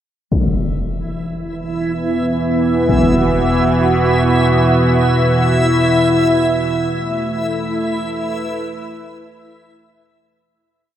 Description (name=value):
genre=dark ambient drone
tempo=free time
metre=none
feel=none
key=unclear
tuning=A4 = 442 Hz
part: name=sweeping resonant pad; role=sustained chords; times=0.3-10.6 s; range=E3 to B4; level=-17 LUFS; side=right 1 dB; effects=chorus, shimmer reverb
part: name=deep rumbling drone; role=drone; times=2.1-10.7 s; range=E2 to B2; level=-20 LUFS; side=right 1 dB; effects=built-in reverb
part: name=impact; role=percussion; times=0.3-3.1 s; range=none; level=-20 LUFS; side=left 1 dB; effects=low-pass filter on sfx
part: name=backwards swelling texture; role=texture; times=1.5-10.6 s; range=E4 to E5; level=-19 LUFS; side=left 1 dB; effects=built-in reverb, shimmer reverb
room=wet huge ambient reverb, RT60 9.5 s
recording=none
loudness=-14 LUFS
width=side -10 dB against mid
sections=0.3-10.5 A section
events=fade-out 5.4-10.5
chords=0.3 E5; 5.4 Asus2/E